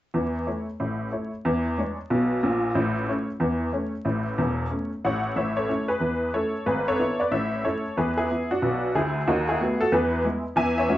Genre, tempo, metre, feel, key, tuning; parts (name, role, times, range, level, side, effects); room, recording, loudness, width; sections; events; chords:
jazz, stride piano; 184 BPM; 4/4; swing 62% on 8ths; A major; A4 = 440 Hz
honky-tonk upright piano; solo; 0.1-11.0 s; E1 to G#5; -23 LUFS; equal
wet studio ambience, RT60 0.5 s; heard from further back in the room, vinyl crackle, nothing above 7.9 kHz; -23 LUFS; side -14 dB against mid
0.1-5.4 A section; 5.4-11.0 B section
0.1 A/E; 1.4 E6; 2.8 A; 6.7 E7/G#; 7.3 A; 8.0 E; 9.3 B7/D#; 9.9 E